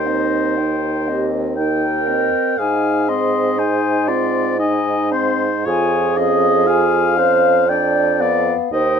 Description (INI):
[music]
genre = classical, slow romantic movement for wind quintet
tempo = 59 BPM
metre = 3/4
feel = rubato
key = C minor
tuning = A4 = 438 Hz
[part]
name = mellow concert flute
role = melody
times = 0.0-9.0 s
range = Eb5 to C6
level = -23 LUFS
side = left 8 dB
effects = none
[part]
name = clear oboe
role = second line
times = 0.0-9.0 s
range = C5 to G5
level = -21 LUFS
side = left 6 dB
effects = none
[part]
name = dark clarinet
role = accompaniment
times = 0.0-9.0 s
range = Eb4 to D5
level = -20 LUFS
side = right 7 dB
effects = none
[part]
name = warm French horn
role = accompaniment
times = 0.0-9.0 s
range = B3 to F4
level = -23 LUFS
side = left 2 dB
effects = none
[part]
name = warm bassoon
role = bass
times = 0.0-9.0 s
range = Eb2 to Ab2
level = -21 LUFS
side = right 2 dB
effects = none
[sound]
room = light reverb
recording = minimal, uncompressed stereo recording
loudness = -15 LUFS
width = side -7 dB against mid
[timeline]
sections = 0.0-9.0 A section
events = none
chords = 0.0 Cm/Eb; 2.6 Ab; 5.7 Db/F; 7.7 G7/F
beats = 0.58 1.58 | 2.59 3.59 4.59 | 5.67 6.68 7.70 | 8.72